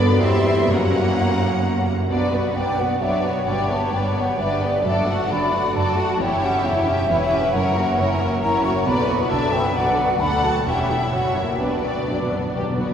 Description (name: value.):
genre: classical.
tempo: 132 BPM.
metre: 3/4.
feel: rubato.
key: B minor.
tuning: A4 = 442 Hz.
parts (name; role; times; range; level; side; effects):
warm symphonic violin section; melody; 0.0-12.8 s; F#4 to C6; -29 LUFS; left 2 dB; none.
warm symphonic violin section; second line; 0.0-12.9 s; D4 to A5; -26 LUFS; left 2 dB; none.
warm symphonic viola section; accompaniment; 0.0-12.9 s; D3 to F#4; -26 LUFS; right 1 dB; none.
mellow French horn section; sustained chords; 0.0-1.8 s; F#4 to A4; -26 LUFS; equal; none.
rich symphonic cello section; bass; 0.0-12.9 s; D2 to D4; -27 LUFS; right 2 dB; none.
rich symphonic double bass section; bass; 0.0-12.9 s; E1 to G2; -26 LUFS; right 1 dB; none.
timpani; percussion; 0.7-1.4, 4.8-5.5, 11.6-12.9 s; F#2 to B2; -32 LUFS; equal; none.
mellow hollow concert flute; second line; 2.1-12.8 s; B4 to C#6; -23 LUFS; left 1 dB; none.
room: wet cathedral reverb, RT60 6.0 s.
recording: heard from further back in the room.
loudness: -18 LUFS.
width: side -8 dB against mid.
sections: 0.0-2.1 A section; 2.1-12.9 B section.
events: timpani fill 11.6-12.9.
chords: 0.2 C/E; 0.7 F#; 2.1 Bm; 3.5 G; 4.8 D/F#; 6.2 C#dim/E; 7.5 F#7; 8.9 Bm; 10.2 D; 10.7 C#dim/E; 11.1 F#7; 11.6 Bm.